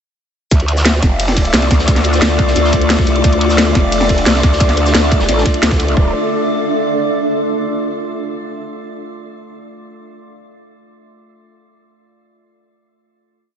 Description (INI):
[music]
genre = dark technical drum and bass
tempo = 176 BPM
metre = 4/4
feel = straight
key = D minor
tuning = A4 = 439 Hz
[part]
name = metallic inharmonic drone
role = sustained chords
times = 1.1-6.1 s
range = A3 to D5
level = -19 LUFS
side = left 2 dB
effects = chorus, built-in reverb, sidechain pumping
[part]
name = growl bass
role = bass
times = 0.5-6.1 s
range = D1 to D2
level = -16 LUFS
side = equal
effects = chorus, overdrive, sidechain pumping
[part]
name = crunchy breakbeat drum kit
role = drums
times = 0.5-5.9 s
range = hi-hat, ride cymbal, snare drum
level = -25 LUFS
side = right 1 dB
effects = high-pass filter on cymbals, high-pass filter on hats, high-pass filter on snare, high-pass filter on room
[part]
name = drum and bass drum kit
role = drums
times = 0.5-6.0 s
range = hi-hat, shaker, snare drum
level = -17 LUFS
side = left 1 dB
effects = overdrive
[part]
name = electronic kick drum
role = drums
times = 0.5-6.0 s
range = none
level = -14 LUFS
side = equal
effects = overdrive
[part]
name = granular cloud pad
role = texture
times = 1.7-7.3 s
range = D4 to E5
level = -22 LUFS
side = right 2 dB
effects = built-in reverb, sidechain pumping
[sound]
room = moderate huge ambient reverb, RT60 5.2 s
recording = dreamy mix soaked in reverb, nothing above 8.0 kHz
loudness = -11 LUFS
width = side -8 dB against mid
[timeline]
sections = 0.5-6.0 drop; 6.0-7.3 final chord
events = drop 0.5-6.0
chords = 0.5 Dm; 6.0 D5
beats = | 0.51 0.85 1.20 1.54 | 1.88 2.22 2.56 2.90 | 3.24 3.58 3.92 4.26 | 4.61 4.95 5.29 5.63 | 5.97 6.31 6.65 6.99